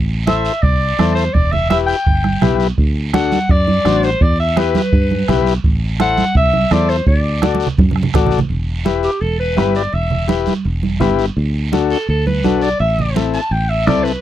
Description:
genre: latin, cumbia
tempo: 168 BPM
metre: 4/4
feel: straight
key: E minor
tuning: A4 = 441 Hz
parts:
  - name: fingered electric bass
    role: bass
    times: 0.0-14.2 s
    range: E1 to G2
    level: -18 LUFS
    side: equal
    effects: none
  - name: bright clarinet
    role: melody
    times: 0.3-14.2 s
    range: G4 to A5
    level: -18 LUFS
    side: left 1 dB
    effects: none
  - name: combo organ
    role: accompaniment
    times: 0.3-14.1 s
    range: C4 to D5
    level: -17 LUFS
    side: left 10 dB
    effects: none
  - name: bombo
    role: percussion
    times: 0.3-8.3 s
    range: none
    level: -16 LUFS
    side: right 1 dB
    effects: none
  - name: congas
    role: percussion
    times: 0.3-14.1 s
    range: none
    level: -19 LUFS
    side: right 5 dB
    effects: none
  - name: guiro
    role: percussion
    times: 0.3-14.2 s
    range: none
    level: -31 LUFS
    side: right 7 dB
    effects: none
room: little or no reverb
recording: dry, close 1970s-style studio recording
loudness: -13 LUFS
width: side -12 dB against mid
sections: 0.0-8.5 A section; 8.5-14.2 B section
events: drum fill 7.4-8.5; clarinet solo 8.5-14.2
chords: 0.0 Am; 1.4 Em; 2.8 D; 4.2 Em; 5.6 Am; 7.1 D; 8.5 Em; 11.4 D; 12.8 Am

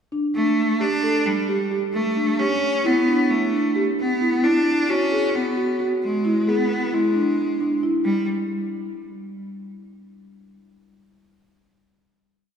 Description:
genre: contemporary instrumental, chamber music in an uneven meter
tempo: 265 BPM (eighths)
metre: 9/8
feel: straight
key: unclear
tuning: A4 = 443 Hz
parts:
  - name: marimba with soft mallets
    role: arpeggios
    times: 0.1-8.3 s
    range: G3 to A4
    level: -22 LUFS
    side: equal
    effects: none
  - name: bright cello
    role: melody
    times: 0.3-8.3 s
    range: G3 to D4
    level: -22 LUFS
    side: equal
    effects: none
room: wet church reverb, RT60 3.0 s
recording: recorded in a church or concert hall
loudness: -19 LUFS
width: side -7 dB against mid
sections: 0.0-8.1 A section; 8.1-10.1 final note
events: none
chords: 0.0 Gsus2; 4.0 Eadd9; 8.1 N.C.

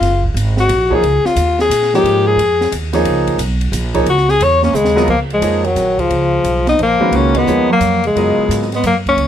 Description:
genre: modal jazz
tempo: 177 BPM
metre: 3/4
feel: swing 65% on 8ths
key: Db mixolydian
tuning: A4 = 440 Hz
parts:
  - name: breathy alto saxophone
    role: melody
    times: 0.0-9.3 s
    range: F3 to Db5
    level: -14 LUFS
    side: left 3 dB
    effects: plate reverb
  - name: upright bass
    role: bass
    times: 0.0-9.3 s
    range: Gb1 to Bb2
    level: -19 LUFS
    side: right 1 dB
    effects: none
  - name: open jazz drum kit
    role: drums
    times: 0.0-9.3 s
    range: crash cymbal, hi-hat, kick drum, ride cymbal, snare drum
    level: -25 LUFS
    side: right 1 dB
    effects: none
  - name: clear concert grand piano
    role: accompaniment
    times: 0.9-8.7 s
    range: Eb3 to Eb5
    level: -17 LUFS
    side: right 2 dB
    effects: none
  - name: warm bass clarinet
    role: second line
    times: 4.6-9.3 s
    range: Db3 to Cb4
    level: -20 LUFS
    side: right 5 dB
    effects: none
room: light reverb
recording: none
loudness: -12 LUFS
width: side -10 dB against mid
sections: 0.0-5.1 A section; 5.1-9.3 B section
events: alto saxophone solo 0.0-5.1; drum fill 4.7-5.1; band accent 7.3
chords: 0.0 Gbadd9; 1.0 Db69; 3.0 Gbadd9 (rootless); 5.1 Db13; 7.1 Gbadd9/Db

